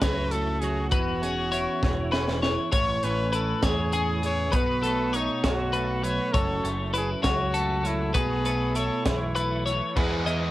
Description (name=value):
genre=math rock and midwest emo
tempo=66 BPM (dotted quarters)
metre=6/8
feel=straight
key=E major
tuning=A4 = 443 Hz
part: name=clear trumpet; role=melody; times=0.0-9.7 s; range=D#4 to C#5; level=-31 LUFS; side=left 1 dB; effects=none
part: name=twelve-string electric guitar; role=accompaniment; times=0.0-10.5 s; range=E2 to G#4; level=-30 LUFS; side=right 4 dB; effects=ensemble chorus
part: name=twelve-string electric guitar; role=arpeggios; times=0.0-10.5 s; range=F#4 to D#5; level=-29 LUFS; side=left 4 dB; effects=tape echo
part: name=growling picked electric bass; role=bass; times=0.0-10.5 s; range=E1 to E2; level=-30 LUFS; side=equal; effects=overdrive
part: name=crisp fusion drum kit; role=drums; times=0.0-10.4 s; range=crash cymbal, hi-hat, kick drum, snare drum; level=-28 LUFS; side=equal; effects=cassette tape
part: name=biting overdriven guitar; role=riff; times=10.0-10.5 s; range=E3 to G#4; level=-30 LUFS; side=equal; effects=none
room=light reverb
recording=home recording on cassette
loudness=-23 LUFS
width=side -16 dB against mid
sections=0.0-10.0 A section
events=drum fill 1.8-2.7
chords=0.0 F#m7; 0.9 E6; 2.7 Amaj7; 4.5 B7; 6.3 F#m7; 8.2 B7sus4; 10.0 Emaj7